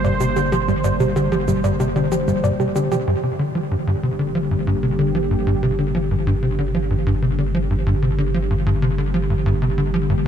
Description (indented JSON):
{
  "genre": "ambient, sequencer-driven space music",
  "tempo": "94 BPM",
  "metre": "4/4",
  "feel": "straight",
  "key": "G minor",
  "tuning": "A4 = 440 Hz",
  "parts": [
    { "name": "sweeping resonant pad", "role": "sustained chords", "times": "0.0-10.3 s", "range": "D3 to C5", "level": "-23 LUFS", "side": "equal", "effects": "chorus" },
    { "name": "soft round pluck", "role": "arpeggios", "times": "0.0-3.0 s", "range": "G3 to D5", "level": "-25 LUFS", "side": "moving between left 3 dB and right 3 dB", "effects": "chorus, auto-pan, tape echo" },
    { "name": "tight sequencer bass", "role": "riff", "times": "0.0-10.3 s", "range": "G2 to F3", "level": "-20 LUFS", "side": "equal", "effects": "lush chorus, tape echo" },
    { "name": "round analog bass", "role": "bass", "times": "0.0-10.3 s", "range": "G1", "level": "-26 LUFS", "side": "equal", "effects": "none" },
    { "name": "electronic toms and cabasa", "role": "percussion", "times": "0.0-3.0 s", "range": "none", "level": "-31 LUFS", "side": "equal", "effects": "tape echo" }
  ],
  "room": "moderate huge ambient reverb, RT60 7.2 s",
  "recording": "dark, warm production",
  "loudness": "-17 LUFS",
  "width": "side -9 dB against mid",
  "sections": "0.0-3.1 A section; 3.1-10.3 B section",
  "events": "filter sweep on synth arpeggio sound 0.0-3.1",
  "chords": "0.0 Gm",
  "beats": "| 0.52 1.16 1.80 2.44 | 3.08 3.71 4.35 4.99 | 5.63 6.27 6.91 7.54 | 8.18 8.82 9.46 10.10"
}